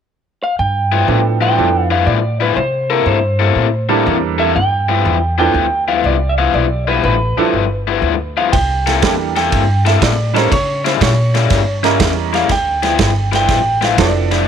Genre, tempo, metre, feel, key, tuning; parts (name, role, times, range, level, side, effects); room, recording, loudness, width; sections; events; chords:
electric blues shuffle; 121 BPM; 4/4; swing 68% on 8ths; G mixolydian; A4 = 445 Hz
electric guitar through a small old amp; melody; 0.4-14.5 s; Bb4 to G5; -18 LUFS; right 1 dB
upright bass; bass; 0.6-14.5 s; F1 to C#3; -18 LUFS; equal
raw garage guitar; riff; 0.9-14.5 s; G2 to A4; -18 LUFS; left 13 dB; overdrive
bright concert grand piano; accompaniment; 1.1-14.5 s; F3 to Eb5; -19 LUFS; right 13 dB
natural country drum kit; drums; 8.5-14.4 s; kick drum, ride cymbal, snare drum; -18 LUFS; right 4 dB
little or no reverb; 1960s-style stereo with parts hard left and right; -12 LUFS; side -8 dB against mid
0.6-14.5 A section
0.0 N.C.; 0.6 G13; 2.6 C13; 4.6 G13; 8.5 C13; 10.5 C#dim7; 12.5 G13